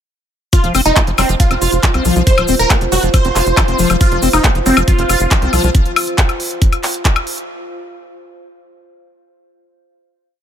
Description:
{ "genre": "psychedelic trance", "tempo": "138 BPM", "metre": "4/4", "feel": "straight", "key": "unclear", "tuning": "A4 = 440 Hz", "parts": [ { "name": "supersaw stab", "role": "melody", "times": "0.5-5.7 s", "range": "C4 to C5", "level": "-18 LUFS", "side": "right 1 dB", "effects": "phaser, sidechain pumping, dub echo" }, { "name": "drum and bass drum kit", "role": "drums", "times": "0.5-7.5 s", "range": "handclaps, hi-hat, woodblock", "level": "-18 LUFS", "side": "left 2 dB", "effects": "none" }, { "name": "electronic kick drum", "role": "drums", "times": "0.5-7.1 s", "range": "none", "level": "-13 LUFS", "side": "equal", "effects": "none" }, { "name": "tube shaker", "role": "percussion", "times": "0.5-5.7 s", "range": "none", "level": "-26 LUFS", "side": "left 3 dB", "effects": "none" }, { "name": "warbly tape-like pad", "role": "texture", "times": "0.5-7.5 s", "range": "F4 to F5", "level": "-23 LUFS", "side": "right 3 dB", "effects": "chorus, built-in reverb, sidechain pumping" }, { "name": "liquid acid bass", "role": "riff", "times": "0.6-5.7 s", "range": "F3 to F4", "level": "-20 LUFS", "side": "moving between left 9 dB and right 4 dB", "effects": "chorus, auto-pan, sidechain pumping, digital delay" }, { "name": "tight sequencer bass", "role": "bass", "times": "0.6-5.7 s", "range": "Eb1 to C2", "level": "-17 LUFS", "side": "equal", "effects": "tube saturation" } ], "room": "little or no reverb", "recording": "none", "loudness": "-11 LUFS", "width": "side -9 dB against mid", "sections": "0.5-7.5 drop", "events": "drop 0.5-7.5", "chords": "0.5 F5" }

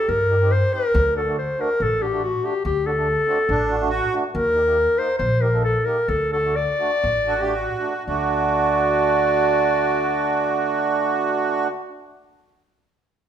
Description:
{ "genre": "klezmer", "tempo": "108-142 BPM", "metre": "4/4", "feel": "straight", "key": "D phrygian dominant", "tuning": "A4 = 440 Hz", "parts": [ { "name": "clear clarinet", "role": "melody", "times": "0.0-11.7 s", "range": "F#4 to D5", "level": "-21 LUFS", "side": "left 1 dB", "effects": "none" }, { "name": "upright bass", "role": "bass", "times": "0.1-11.7 s", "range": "A1 to G2", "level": "-26 LUFS", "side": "equal", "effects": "none" }, { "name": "mellow accordion", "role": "accompaniment", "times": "0.3-11.7 s", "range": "A3 to Bb4", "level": "-24 LUFS", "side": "right 5 dB", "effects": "none" }, { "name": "accordion", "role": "second line", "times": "3.3-4.1, 7.3-11.7 s", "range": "C4 to G4", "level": "-25 LUFS", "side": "right 2 dB", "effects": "light tremolo tuning" } ], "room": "moderate recital hall reverb, RT60 1.3 s", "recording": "minimal, uncompressed stereo recording", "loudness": "-18 LUFS", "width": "side -9 dB against mid", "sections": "0.0-8.1 A section; 8.1-12.5 B section", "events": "slowing down 4.3-8.1", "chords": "0.0 Cm; 0.9 D; 4.3 Eb; 6.1 D" }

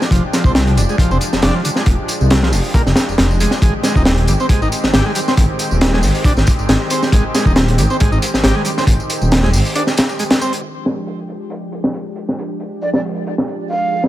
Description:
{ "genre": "breakbeat, breaks", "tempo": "137 BPM", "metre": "4/4", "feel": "swing 54% on 16ths", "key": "F dorian", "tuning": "A4 = 440 Hz", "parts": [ { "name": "lush unison pad", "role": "sustained chords", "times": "0.0-14.1 s", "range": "Eb3 to G4", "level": "-23 LUFS", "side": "equal", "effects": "chorus, sidechain pumping" }, { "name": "crunchy breakbeat drum kit", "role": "drums", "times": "0.0-14.1 s", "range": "hi-hat, kick drum, snare drum", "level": "-15 LUFS", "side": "equal", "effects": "low-pass filter on kick, low-pass filter on hats, low-pass filter on snare, low-pass filter on room" }, { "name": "tambourine", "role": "drums", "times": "0.0-10.6 s", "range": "none", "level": "-28 LUFS", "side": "equal", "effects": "none" }, { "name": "combo organ", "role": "riff", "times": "0.1-10.5 s", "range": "D3 to G4", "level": "-22 LUFS", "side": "equal", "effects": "tube saturation, vintage 12-bit sampler grit, ping-pong delay" }, { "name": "dark detuned saw bass", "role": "bass", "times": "0.1-9.6 s", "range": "Eb1 to C2", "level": "-16 LUFS", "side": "equal", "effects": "tube saturation" }, { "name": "breathy mellow silver concert flute", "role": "melody", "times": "12.8-14.0 s", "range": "D5 to F5", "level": "-20 LUFS", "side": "right 2 dB", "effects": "old record sound, ping-pong delay" } ], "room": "small room ambience", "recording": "none", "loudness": "-13 LUFS", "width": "side -14 dB against mid", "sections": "0.0-10.6 A section; 10.6-14.1 B section", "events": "kick drops out 9.8-10.6; filter sweep on analog synth pad 10.6-14.1", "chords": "0.0 Fm69; 3.6 Abmaj7; 10.6 Fm69" }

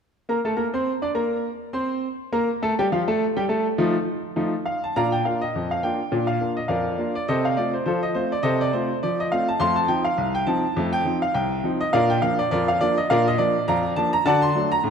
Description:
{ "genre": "ragtime piano", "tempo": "103 BPM", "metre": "2/4", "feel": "swing 57% on 16ths", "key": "Bb major", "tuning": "A4 = 440 Hz", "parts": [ { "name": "bright upright piano", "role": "solo", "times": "0.3-14.9 s", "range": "C2 to D6", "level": "-20 LUFS", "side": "equal", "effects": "none" } ], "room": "wet concert hall reverb, RT60 1.9 s", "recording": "dark, warm production", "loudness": "-20 LUFS", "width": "side -6 dB against mid", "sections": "0.3-4.9 A section; 4.9-14.9 B section", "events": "none", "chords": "0.3 N.C.; 2.6 F7; 4.9 Bb; 7.3 F/C; 9.6 F7; 11.9 Bb; 14.2 D" }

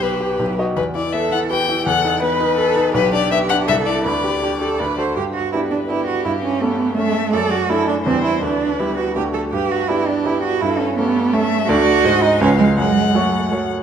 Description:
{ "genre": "quick classical-period movement for piano trio", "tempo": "165 BPM", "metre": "3/4", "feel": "straight", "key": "G major", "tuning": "A4 = 440 Hz", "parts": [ { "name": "rich violin", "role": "melody", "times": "0.0-13.7 s", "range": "G4 to G5", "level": "-22 LUFS", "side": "left 7 dB", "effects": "none" }, { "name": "rich cello", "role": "second line", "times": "0.0-13.5 s", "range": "G#3 to C5", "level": "-19 LUFS", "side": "right 5 dB", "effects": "none" }, { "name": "clear baby grand piano", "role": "accompaniment", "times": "0.0-13.8 s", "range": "B1 to D#5", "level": "-20 LUFS", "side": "equal", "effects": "none" } ], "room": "wet recital hall reverb, RT60 1.7 s", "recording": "none", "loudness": "-16 LUFS", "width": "side -8 dB against mid", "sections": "0.0-5.2 A section; 5.2-13.8 B section", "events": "none", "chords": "0.4 B; 0.8 Em; 1.9 B7/E; 2.9 G/B; 3.7 Am/C; 4.0 G/D; 4.8 D; 5.2 G; 6.2 A7/G; 7.3 D/F#; 8.1 C/E; 8.4 G/D; 9.2 D; 9.5 G; 10.6 A7/G; 11.7 D; 12.0 G#7; 12.4 C#7; 12.8 F#m" }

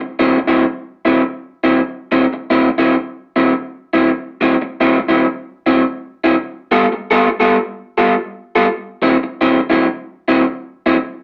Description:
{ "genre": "blues", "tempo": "104 BPM", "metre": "4/4", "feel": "swing 64% on 8ths", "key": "unclear", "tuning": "A4 = 440 Hz", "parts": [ { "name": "electric guitar through a small old amp", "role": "solo", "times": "0.0-11.0 s", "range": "D3 to A4", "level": "-15 LUFS", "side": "equal", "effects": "none" } ], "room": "wet club reverb, RT60 0.7 s", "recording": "none", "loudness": "-16 LUFS", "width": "mono", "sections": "0.0-11.0 A section", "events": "none", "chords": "0.0 D9; 6.4 G9; 8.7 D9" }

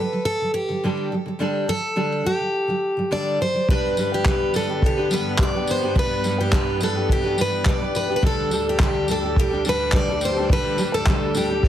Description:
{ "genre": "acoustic pop", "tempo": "106 BPM", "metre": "4/4", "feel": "straight", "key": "G major", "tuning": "A4 = 440 Hz", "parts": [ { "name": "picked plugged-in steel-string acoustic guitar", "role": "melody", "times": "0.0-11.7 s", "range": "G4 to D5", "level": "-23 LUFS", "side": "equal", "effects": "ping-pong delay" }, { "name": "fingerpicked steel-string acoustic guitar", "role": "accompaniment", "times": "0.0-11.7 s", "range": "D3 to B4", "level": "-24 LUFS", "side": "equal", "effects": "none" }, { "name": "clear studio string section", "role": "sustained chords", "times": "3.7-11.7 s", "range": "D2 to B3", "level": "-30 LUFS", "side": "left 1 dB", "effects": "none" }, { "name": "vintage brush drum kit", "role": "drums", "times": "3.7-11.7 s", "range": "handclaps, kick drum, tambourine", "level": "-22 LUFS", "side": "equal", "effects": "none" } ], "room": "moderate studio reverb, RT60 0.6 s", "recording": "heavily compressed radio sound, multiband compression", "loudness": "-19 LUFS", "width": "side -11 dB against mid", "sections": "0.0-3.7 A section; 3.7-11.7 B section", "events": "none", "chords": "0.0 Dsus4; 3.7 G; 8.2 Dsus4" }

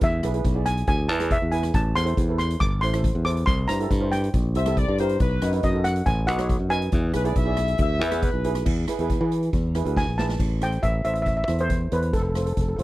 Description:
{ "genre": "calypso", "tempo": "139 BPM", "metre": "4/4", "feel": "straight", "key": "A minor", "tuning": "A4 = 439 Hz", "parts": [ { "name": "steel pan", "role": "melody", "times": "0.0-12.8 s", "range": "A4 to D6", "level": "-27 LUFS", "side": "equal", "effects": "none" }, { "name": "steel pan", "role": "accompaniment", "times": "0.0-12.8 s", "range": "D#4 to D5", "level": "-30 LUFS", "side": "right 3 dB", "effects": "none" }, { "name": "modern bright fingered electric bass", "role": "bass", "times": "0.0-12.8 s", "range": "F1 to E3", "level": "-24 LUFS", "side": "equal", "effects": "none" }, { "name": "street-band drum kit", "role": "drums", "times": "0.0-12.8 s", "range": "crash cymbal, hi-hat, kick drum, rim click, snare drum", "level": "-27 LUFS", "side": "equal", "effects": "none" }, { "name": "bright horn section", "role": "second line", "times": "4.6-8.7 s", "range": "B4 to E5", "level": "-27 LUFS", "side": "left 4 dB", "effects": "none" } ], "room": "little or no reverb", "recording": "dry, close 1970s-style studio recording", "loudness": "-21 LUFS", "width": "side -17 dB against mid", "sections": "0.0-8.7 A section; 8.7-10.4 B section; 10.4-12.8 C section", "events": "drum fill 10.0-10.4", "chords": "0.0 E; 1.7 Am; 3.5 C7; 5.2 B7; 6.9 E; 10.4 Am; 12.1 F" }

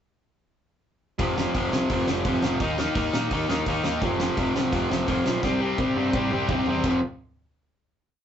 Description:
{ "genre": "punk rock", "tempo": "170 BPM", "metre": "4/4", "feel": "straight", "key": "unclear", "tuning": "A4 = 440 Hz", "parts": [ { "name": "distorted electric guitar", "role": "riff", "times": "1.2-7.0 s", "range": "F2 to Eb4", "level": "-24 LUFS", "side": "left 1 dB", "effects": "distortion" }, { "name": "fuzz picked electric bass", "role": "bass", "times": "1.2-7.0 s", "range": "F1 to Bb2", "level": "-31 LUFS", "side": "equal", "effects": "overdrive" }, { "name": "loose indie drum kit", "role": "drums", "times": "1.2-6.9 s", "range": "crash cymbal, hi-hat, kick drum, snare drum, toms", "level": "-29 LUFS", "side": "right 1 dB", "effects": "none" } ], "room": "moderate studio ambience, RT60 0.5 s", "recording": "rough rehearsal-room recording, nothing above 7.9 kHz", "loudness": "-22 LUFS", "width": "side -9 dB against mid", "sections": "1.2-6.8 verse; 6.8-8.2 final chord", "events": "drum fill 5.4-6.8", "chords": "1.2 F5; 2.6 Eb5; 4.0 F5; 5.4 C5; 6.8 F5" }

